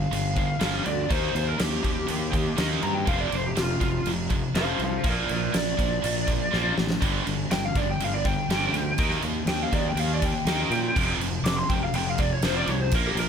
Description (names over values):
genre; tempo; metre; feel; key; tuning
hard rock; 122 BPM; 4/4; straight; unclear; A4 = 439 Hz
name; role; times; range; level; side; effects
lead guitar through a small cranked amp; melody; 0.0-13.3 s; F4 to D6; -29 LUFS; equal; overdrive
scooped high-gain guitar; riff; 0.0-13.3 s; F2 to Eb4; -28 LUFS; right 1 dB; distortion
fuzz fingered electric bass; bass; 0.0-13.3 s; F1 to Bb2; -30 LUFS; equal; overdrive
huge arena drum kit; drums; 0.1-13.3 s; crash cymbal, kick drum, snare drum, splash cymbal; -28 LUFS; equal; none
room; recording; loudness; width
small room reverb; none; -23 LUFS; side -7 dB against mid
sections
0.0-13.3 A section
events
lead electric guitar solo 0.0-13.3; drum fill 6.5-7.0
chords
0.0 G5; 1.1 Eb; 3.1 F5; 5.0 Bb; 7.0 G5; 9.0 Eb; 11.0 F5